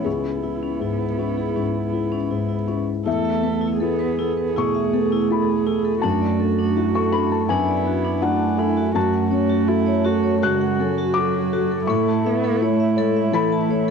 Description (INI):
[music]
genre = neoclassical piano and strings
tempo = 82 BPM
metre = 4/4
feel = rubato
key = unclear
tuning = A4 = 441 Hz
[part]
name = dark cello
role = second line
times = 0.0-13.9 s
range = F#3 to B3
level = -24 LUFS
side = right 10 dB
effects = cassette tape
[part]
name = felt-muted upright piano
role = accompaniment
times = 0.0-13.9 s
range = C#2 to F#6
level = -22 LUFS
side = left 7 dB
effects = cassette tape
[part]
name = warm viola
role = accompaniment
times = 0.0-13.9 s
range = D4 to A4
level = -26 LUFS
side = right 11 dB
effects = cassette tape
[part]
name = vibraphone with hard mallets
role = arpeggios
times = 0.1-13.9 s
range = C#4 to A5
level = -27 LUFS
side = left 8 dB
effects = cassette tape, analog delay
[sound]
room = moderate small room reverb, RT60 0.6 s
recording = home recording on cassette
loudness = -18 LUFS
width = side -6 dB against mid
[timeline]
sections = 0.0-3.1 A section; 3.1-13.9 B section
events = none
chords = 0.1 C#m7; 3.1 Esus4; 6.0 Dadd9/F#; 9.0 F#m; 11.9 A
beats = | 0.06 0.81 1.56 2.31 | 3.06 3.81 4.58 5.31 | 6.04 6.77 7.50 8.23 | 8.95 9.67 10.43 11.16 | 11.89 12.62 13.34